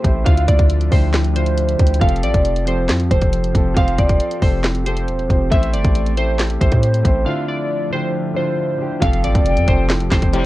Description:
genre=hip hop, trap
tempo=137 BPM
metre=4/4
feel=half-time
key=unclear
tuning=A4 = 440 Hz
part: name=glassy digital keys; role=melody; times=0.0-10.5 s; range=C5 to F5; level=-22 LUFS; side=equal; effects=chorus, low-pass filter
part: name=dark grand piano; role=accompaniment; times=0.0-10.5 s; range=D3 to C5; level=-24 LUFS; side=equal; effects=low-pass filter
part: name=warbly tape-like pad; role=sustained chords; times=0.0-10.5 s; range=D3 to E5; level=-27 LUFS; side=equal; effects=chorus, built-in reverb
part: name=hard-hitting 808-style bass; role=bass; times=0.0-10.5 s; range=E1 to A2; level=-18 LUFS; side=equal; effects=none
part: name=trap drum kit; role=drums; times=0.0-10.4 s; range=handclaps, hi-hat, kick drum, snare drum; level=-17 LUFS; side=equal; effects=vintage 12-bit sampler grit
part: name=impact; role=sound effects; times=9.1-10.5 s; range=none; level=-25 LUFS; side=equal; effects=none
part: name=hollow concert flute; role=second line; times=9.5-9.9 s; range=G5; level=-27 LUFS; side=left 5 dB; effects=ping-pong delay
part: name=mellow brass ensemble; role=stabs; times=10.3-10.5 s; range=A2 to G3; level=-20 LUFS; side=left 3 dB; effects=none
room=little or no reverb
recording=worn, warbling old tape, cassette tape, warbly pitch drift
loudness=-14 LUFS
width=side -16 dB against mid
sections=0.0-9.0 A section; 9.0-10.5 B section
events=break 7.3-9.0; impact 9.0-10.5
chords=0.3 Dmadd9; 2.0 Fadd9; 5.5 Am7; 7.3 Dmadd9; 9.0 Fadd9

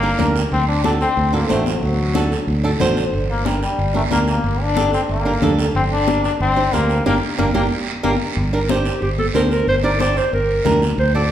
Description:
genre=latin, cumbia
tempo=183 BPM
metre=4/4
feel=straight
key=G harmonic minor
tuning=A4 = 440 Hz
part: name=brilliant trombone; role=second line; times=0.0-8.1 s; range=F#3 to D4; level=-21 LUFS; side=left 3 dB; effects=none
part: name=flamenco guitar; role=accompaniment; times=0.0-11.2 s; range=D4 to C5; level=-22 LUFS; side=right 2 dB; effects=none
part: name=fingered electric bass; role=bass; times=0.0-11.3 s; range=G1 to D2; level=-20 LUFS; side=equal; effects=none
part: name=congas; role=percussion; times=0.2-11.3 s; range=none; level=-25 LUFS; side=left 3 dB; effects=none
part: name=guiro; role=percussion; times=0.2-11.3 s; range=none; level=-30 LUFS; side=right 5 dB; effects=none
part: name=warm clarinet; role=melody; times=8.5-11.3 s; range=G4 to D5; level=-19 LUFS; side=right 2 dB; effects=none
room=wet recital hall reverb, RT60 1.6 s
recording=recorded in a church or concert hall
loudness=-16 LUFS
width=side -11 dB against mid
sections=0.0-8.4 A section; 8.4-11.3 B section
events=trombone solo 0.0-8.4; band accent 7.1-8.4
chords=0.0 Gm; 0.5 D7; 3.1 Gm

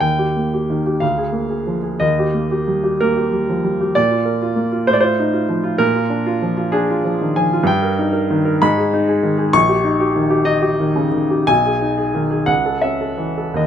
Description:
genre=classical, romantic character piece for solo piano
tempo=52-66 BPM (dotted quarters)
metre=6/8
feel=rubato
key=Eb major, G# minor from 7.7 s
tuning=A4 = 435 Hz
part: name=warm baby grand piano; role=solo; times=0.0-13.7 s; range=A#1 to C#6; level=-15 LUFS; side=equal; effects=none
room=light reverb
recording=none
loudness=-15 LUFS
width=side -9 dB against mid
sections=0.0-13.7 A section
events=none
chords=0.0 Eb; 1.0 Bb7/D; 2.0 Eb; 4.0 Bb; 4.9 F7/A; 5.8 Bb; 7.7 D#/G; 8.6 G#m; 9.5 D#7/A#; 11.5 G#m/B; 12.5 A/C#

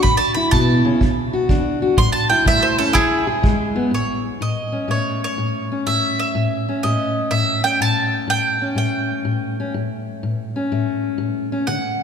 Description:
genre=acoustic country blues, solo or duo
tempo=124 BPM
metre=4/4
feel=swing 67% on 8ths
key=A mixolydian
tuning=A4 = 441 Hz
part: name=mandolin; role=melody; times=0.0-12.0 s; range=E4 to C6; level=-20 LUFS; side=right 2 dB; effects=none
part: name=fingerpicked steel-string acoustic guitar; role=accompaniment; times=0.0-12.0 s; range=E2 to G#4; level=-20 LUFS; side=left 2 dB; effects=none
part: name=kick drum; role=drums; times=0.0-3.6 s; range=none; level=-21 LUFS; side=right 1 dB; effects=none
room=wet church reverb, RT60 3.3 s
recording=recorded in a church or concert hall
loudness=-17 LUFS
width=side -7 dB against mid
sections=0.0-3.9 A section; 3.9-12.0 B section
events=mandolin solo 0.0-3.9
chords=0.0 A; 1.0 D; 2.0 A; 2.9 E; 3.9 A

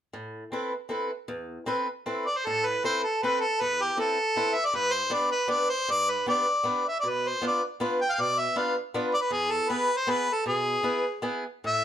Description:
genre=musette waltz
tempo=157 BPM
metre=3/4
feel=rubato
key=A minor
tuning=A4 = 440 Hz
part: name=picked swing-style acoustic guitar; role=accompaniment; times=0.1-11.8 s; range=E2 to B4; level=-30 LUFS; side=equal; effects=none
part: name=warm harmonica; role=melody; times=2.3-11.8 s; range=G4 to G5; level=-25 LUFS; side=equal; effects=plate reverb
room=moderate studio reverb, RT60 0.6 s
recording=none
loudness=-25 LUFS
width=side -10 dB against mid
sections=0.1-2.5 A section; 2.5-11.8 B section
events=none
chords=0.1 Amadd9; 4.7 G; 7.0 Bdim; 9.3 E

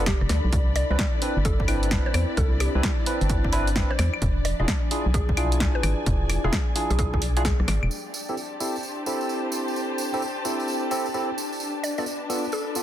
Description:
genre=UK garage, two-step garage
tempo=130 BPM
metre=4/4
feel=swing 64% on 16ths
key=A minor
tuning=A4 = 441 Hz
part: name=soft string machine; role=sustained chords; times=0.0-12.8 s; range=D4 to D5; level=-36 LUFS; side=left 1 dB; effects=ensemble chorus, vintage 12-bit sampler grit, sidechain pumping
part: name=barky tine electric piano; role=stabs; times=0.0-12.8 s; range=B3 to B4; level=-29 LUFS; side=right 1 dB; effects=analog chorus, low-pass filter, tape echo
part: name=organ-like FM bass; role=bass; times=0.0-7.9 s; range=E1 to E2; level=-24 LUFS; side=equal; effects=tube saturation
part: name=dark symphonic string section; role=texture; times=0.0-12.8 s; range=F3 to B5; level=-34 LUFS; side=left 2 dB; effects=sidechain pumping
part: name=mallet-like synth pluck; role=melody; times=0.1-7.9, 11.8-12.7 s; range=G4 to D5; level=-34 LUFS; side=left 1 dB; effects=chorus, tape echo
part: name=electronic kick drum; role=drums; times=0.1-7.6 s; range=none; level=-26 LUFS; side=equal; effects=none
part: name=punchy analog drum machine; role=drums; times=0.1-7.9 s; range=claves, hi-hat, rim click, snare drum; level=-29 LUFS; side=equal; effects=low-pass filter on hats, low-pass filter on snare, low-pass filter on perc
part: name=tambourine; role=percussion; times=7.9-12.8 s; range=none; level=-34 LUFS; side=right 4 dB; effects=none
room=light reverb, digital ambience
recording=dense, heavily limited modern master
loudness=-22 LUFS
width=side -12 dB against mid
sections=0.0-7.9 A section; 7.9-12.8 B section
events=band accent 7.4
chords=0.0 Bm7b5; 0.5 Cmaj9; 4.2 E7b9; 7.9 Am7; 11.4 Bm7b5

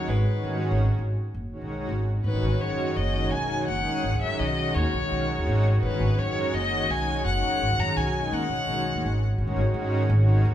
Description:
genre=progressive instrumental, progressive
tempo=168 BPM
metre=5/4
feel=straight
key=G# minor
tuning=A4 = 440 Hz
part: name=rich violin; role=melody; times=0.0-9.2 s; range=B4 to A#5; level=-29 LUFS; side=left 3 dB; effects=none
part: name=electric guitar at the edge of break-up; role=second line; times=0.0-0.6 s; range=G#3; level=-37 LUFS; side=right 1 dB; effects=none
part: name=lush unison pad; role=accompaniment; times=0.0-10.4 s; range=D#3 to G#4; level=-28 LUFS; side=equal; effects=chorus
part: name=upright bass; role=bass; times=0.0-10.5 s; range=F#1 to G#2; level=-25 LUFS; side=equal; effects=none
room=wet large studio reverb, RT60 1.2 s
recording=band playing live in one room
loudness=-23 LUFS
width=side -11 dB against mid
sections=0.0-1.9 A section; 1.9-10.5 B section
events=violin solo 1.9-10.5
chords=0.1 G#m7; 9.0 B/G# (rootless)

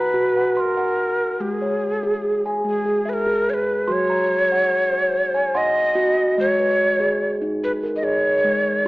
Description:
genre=world meditative, meditative tuned percussion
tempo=72 BPM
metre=3/4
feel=straight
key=unclear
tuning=A4 = 440 Hz
part: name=breathy Native American-style cedar flute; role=melody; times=0.0-8.9 s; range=G#4 to D#5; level=-20 LUFS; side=equal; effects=none
part: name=steel tongue drum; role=arpeggios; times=0.0-8.9 s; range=F#3 to B#5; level=-22 LUFS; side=equal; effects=none
room=wet echo chamber reverb, RT60 1.7 s, studio reverb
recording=AM radio sound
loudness=-18 LUFS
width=side -20 dB against mid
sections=0.0-3.9 A section; 3.9-8.9 B section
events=none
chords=0.0 F#; 1.4 G#sus4; 3.9 F#; 6.4 G#m

